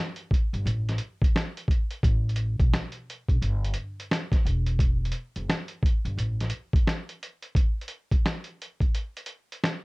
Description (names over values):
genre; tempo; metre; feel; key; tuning
lo-fi hip hop; 87 BPM; 4/4; swing 64% on 16ths; unclear; A4 = 440 Hz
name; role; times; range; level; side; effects
lo-fi sampler-style drum kit; drums; 0.2-9.8 s; finger snaps, hi-hat, kick drum, snare drum; -24 LUFS; equal; none
upright bass; bass; 0.5-6.5 s; E1 to B1; -27 LUFS; equal; none
room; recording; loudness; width
little or no reverb; cassette tape; -24 LUFS; side -26 dB against mid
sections
0.0-9.8 A section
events
none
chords
none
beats
0.65 1.34 | 2.03 2.72 3.41 4.10 | 4.79 5.48 6.17 6.86 | 7.55 8.24 8.93 9.62